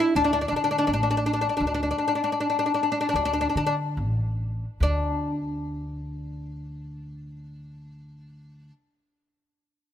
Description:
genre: Arabic maqam ensemble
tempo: 69-85 BPM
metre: 4/4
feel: straight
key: unclear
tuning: A4 = 439 Hz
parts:
  - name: oud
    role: melody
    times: 0.0-8.7 s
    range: D4 to E4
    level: -24 LUFS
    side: left 2 dB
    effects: none
  - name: upright bass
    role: bass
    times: 0.2-8.7 s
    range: A1 to D3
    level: -30 LUFS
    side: equal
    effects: none
room: small room reverb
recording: rough home demo mix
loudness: -23 LUFS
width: side -10 dB against mid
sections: 0.0-4.8 A section; 4.8-8.3 B section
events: slowing down 0.0-4.8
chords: none

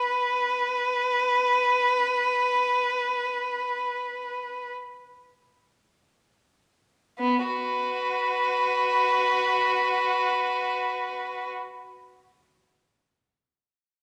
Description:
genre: classical, free, expressive piece for unaccompanied violin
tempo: free time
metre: none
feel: none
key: unclear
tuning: A4 = 441 Hz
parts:
  - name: warm violin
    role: solo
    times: 0.0-11.6 s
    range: B3 to B4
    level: -25 LUFS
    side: equal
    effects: none
room: wet recital hall reverb, RT60 1.6 s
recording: studio reverb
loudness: -25 LUFS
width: mono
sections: 0.0-7.2 A section; 7.2-14.0 B section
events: slowing down 0.0-7.2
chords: none

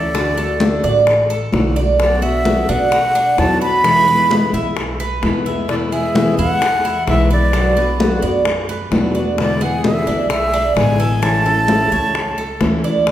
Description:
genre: latin, Cuban son and guajira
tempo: 130 BPM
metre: 4/4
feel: straight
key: A major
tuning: A4 = 440 Hz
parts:
  - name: breathy concert flute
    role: melody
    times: 0.0-12.6 s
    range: D5 to B5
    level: -18 LUFS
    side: right 1 dB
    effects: none
  - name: picked plugged-in acoustic archtop guitar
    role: accompaniment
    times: 0.0-13.1 s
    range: B2 to F#4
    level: -20 LUFS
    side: left 2 dB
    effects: none
  - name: Cuban tres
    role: arpeggios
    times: 0.0-13.1 s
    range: C#4 to E5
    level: -21 LUFS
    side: right 3 dB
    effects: none
  - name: upright bass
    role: bass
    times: 0.0-13.1 s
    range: A1 to B2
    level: -22 LUFS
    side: equal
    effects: none
  - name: bongos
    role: percussion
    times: 0.1-13.1 s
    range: none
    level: -24 LUFS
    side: left 3 dB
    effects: none
  - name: congas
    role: percussion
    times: 0.1-13.1 s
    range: none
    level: -22 LUFS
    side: equal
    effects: none
room: wet recital hall reverb, RT60 1.6 s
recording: recorded in a church or concert hall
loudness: -13 LUFS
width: side -12 dB against mid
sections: 0.0-13.1 A section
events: none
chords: 0.1 D; 2.0 Bm; 3.8 E; 7.5 Bm; 9.4 E7; 11.2 A

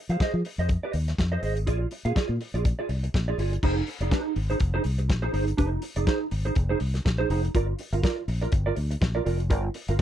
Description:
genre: disco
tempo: 123 BPM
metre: 4/4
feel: swing 56% on 16ths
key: F dorian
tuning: A4 = 440 Hz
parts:
  - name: mellow electric guitar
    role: accompaniment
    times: 0.1-10.0 s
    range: Eb4 to F5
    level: -29 LUFS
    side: right 4 dB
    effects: ensemble chorus
  - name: fingered electric bass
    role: bass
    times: 0.1-10.0 s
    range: F1 to F3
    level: -26 LUFS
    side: left 1 dB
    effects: none
  - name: warm soul drum kit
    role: drums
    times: 0.1-10.0 s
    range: crash cymbal, hi-hat, kick drum, snare drum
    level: -27 LUFS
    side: left 1 dB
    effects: none
room: little or no reverb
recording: dry, close 1970s-style studio recording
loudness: -24 LUFS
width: side -11 dB against mid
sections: 0.0-3.6 A section; 3.6-10.0 B section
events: none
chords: 0.0 Fm7; 1.7 Bb7; 3.6 Fm7; 7.5 Gm7

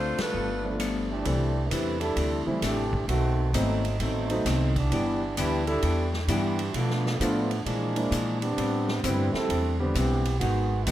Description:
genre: jazz, big band swing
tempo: 131 BPM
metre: 4/4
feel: swing 66% on 8ths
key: C major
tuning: A4 = 440 Hz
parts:
  - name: clear saxophone section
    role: melody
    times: 0.0-0.8 s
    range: A3 to C5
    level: -30 LUFS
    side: equal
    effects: none
  - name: vintage hollow-body jazz guitar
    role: accompaniment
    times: 0.0-10.9 s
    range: Ab2 to A4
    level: -33 LUFS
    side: left 6 dB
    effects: none
  - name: upright bass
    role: bass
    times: 0.0-10.9 s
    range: G1 to B2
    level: -28 LUFS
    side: equal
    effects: none
  - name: swinging big-band drum kit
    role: drums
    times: 0.2-10.9 s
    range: hi-hat, kick drum, ride cymbal, snare drum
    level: -34 LUFS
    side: right 1 dB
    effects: none
  - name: warm baby grand piano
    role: accompaniment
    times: 0.6-10.9 s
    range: D3 to G4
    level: -31 LUFS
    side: equal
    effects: none
  - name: clear trombone section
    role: second line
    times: 1.1-10.9 s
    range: D#3 to B4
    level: -29 LUFS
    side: right 2 dB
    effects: none
room: moderate large studio reverb, RT60 1.4 s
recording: none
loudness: -24 LUFS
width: side -13 dB against mid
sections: 0.0-1.3 A section; 1.3-10.9 B section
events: band accent 0.1; trombone section solo 1.3-10.9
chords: 0.3 G9; 1.3 C69; 3.1 B7b9; 4.9 Em7; 6.7 Bm7b5; 7.7 Bb7#11; 8.6 Am11; 10.4 Abm7

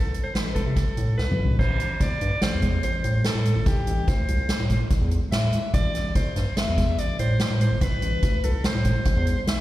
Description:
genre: progressive instrumental, band music in an uneven meter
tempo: 145 BPM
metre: 5/4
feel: straight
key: A minor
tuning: A4 = 445 Hz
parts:
  - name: mellow soprano saxophone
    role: melody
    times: 0.0-9.6 s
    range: G4 to E5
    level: -29 LUFS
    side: left 1 dB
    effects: slapback echo, ping-pong delay
  - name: round analog bass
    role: bass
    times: 0.0-9.6 s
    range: G1 to C3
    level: -24 LUFS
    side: equal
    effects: none
  - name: soft-mallet drum kit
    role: drums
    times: 0.1-9.6 s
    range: crash cymbal, hi-hat, kick drum, snare drum, toms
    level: -24 LUFS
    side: equal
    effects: none
room: studio reverb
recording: live gig heard through the venue's PA, recital hall reverb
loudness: -21 LUFS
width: side -15 dB against mid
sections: 0.0-1.6 A section; 1.6-9.6 B section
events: drum fill 1.2-1.6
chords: 0.0 Amadd9; 1.6 Am7

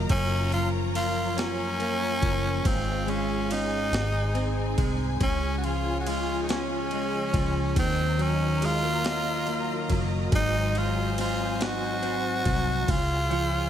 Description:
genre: six-eight pop ballad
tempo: 47 BPM (dotted quarters)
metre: 6/8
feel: straight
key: Db major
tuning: A4 = 435 Hz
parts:
  - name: direct-recorded clean electric guitar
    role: accompaniment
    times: 0.0-13.7 s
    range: Gb2 to F4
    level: -30 LUFS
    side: left 1 dB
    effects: double-tracked left and right
  - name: clear studio string section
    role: sustained chords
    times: 0.0-13.7 s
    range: Gb3 to Bb5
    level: -35 LUFS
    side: left 1 dB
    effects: none
  - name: vintage muted fingered electric bass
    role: bass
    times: 0.0-13.7 s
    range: Gb1 to Eb2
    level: -30 LUFS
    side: equal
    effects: none
  - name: raspy tenor saxophone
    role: melody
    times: 0.1-13.7 s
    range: C4 to Gb4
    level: -29 LUFS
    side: equal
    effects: tape echo
  - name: breakbeat sampler-style drum kit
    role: drums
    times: 0.1-13.5 s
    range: kick drum, ride cymbal, snare drum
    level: -31 LUFS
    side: equal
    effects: none
room: light reverb, digital ambience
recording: none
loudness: -24 LUFS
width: side -10 dB against mid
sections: 0.0-13.7 A section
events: none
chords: 0.1 Gbmaj7; 2.7 Db/Ab; 3.9 Ab; 5.2 Db; 7.8 Ebm; 10.3 Ab7; 12.9 Db

